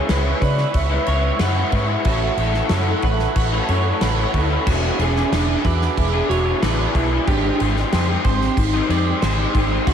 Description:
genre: rock, shoegaze and dream pop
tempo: 92 BPM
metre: 4/4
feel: straight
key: E mixolydian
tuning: A4 = 441 Hz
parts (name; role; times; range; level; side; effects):
- mellow horn-like synth lead; melody; 0.0-9.6 s; B#3 to F#5; -26 LUFS; right 1 dB; chorus, diffuse ambient delay
- dark analog pad; sustained chords; 0.0-9.9 s; A4 to D6; -28 LUFS; equal; chorus
- electric guitar at the edge of break-up; arpeggios; 0.0-9.9 s; F#4 to D5; -28 LUFS; right 9 dB; analog chorus, diffuse ambient delay
- electric guitar through a small old amp; riff; 0.0-9.9 s; E2 to G4; -29 LUFS; right 8 dB; reverse reverb
- raw garage guitar; riff; 0.0-9.9 s; G#2 to G#4; -24 LUFS; left 8 dB; overdrive, ensemble chorus
- vintage muted fingered electric bass; bass; 0.1-9.9 s; E1 to C#3; -21 LUFS; equal; none
- loose indie drum kit; drums; 0.1-9.9 s; crash cymbal, kick drum, snare drum; -24 LUFS; equal; none
room: moderate huge ambient reverb, RT60 6.3 s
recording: dreamy mix soaked in reverb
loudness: -16 LUFS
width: side -8 dB against mid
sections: 0.0-4.7 A section; 4.7-9.9 A section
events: none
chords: 0.0 C#m7; 2.1 A6; 4.7 E7; 7.3 G#maj7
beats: 0.09 0.75 1.40 | 2.05 2.71 3.36 4.01 | 4.67 5.32 5.97 6.62 | 7.27 7.92 8.57 9.22 | 9.87

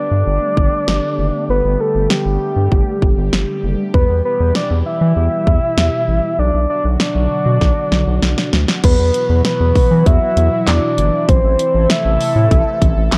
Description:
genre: synth-pop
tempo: 98 BPM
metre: 4/4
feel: straight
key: E minor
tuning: A4 = 440 Hz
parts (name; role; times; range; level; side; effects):
- soft octave-layered synth lead; melody; 0.0-13.2 s; G4 to E5; -20 LUFS; equal; chorus, tape echo
- phased analog pad; sustained chords; 0.0-13.2 s; B2 to A4; -25 LUFS; equal; phaser, chorus
- round analog bass; bass; 0.1-13.2 s; F#1 to E3; -18 LUFS; equal; none
- house drum kit; drums; 0.6-13.2 s; crash cymbal, handclaps, hi-hat, kick drum, snare drum; -18 LUFS; equal; none
room: light reverb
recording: dark, warm production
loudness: -15 LUFS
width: mono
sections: 0.0-8.8 A section; 8.8-13.2 B section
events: drum fill 7.6-8.8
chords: 0.0 Gadd9; 3.9 Em; 6.4 Bm; 8.8 Esus2; 11.3 Am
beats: 0.27 0.88 | 1.49 2.10 2.71 3.33 | 3.94 4.55 5.16 5.78 | 6.39 7.00 7.61 8.22 | 8.84 9.45 10.06 10.67 | 11.29 11.90 12.51 13.12

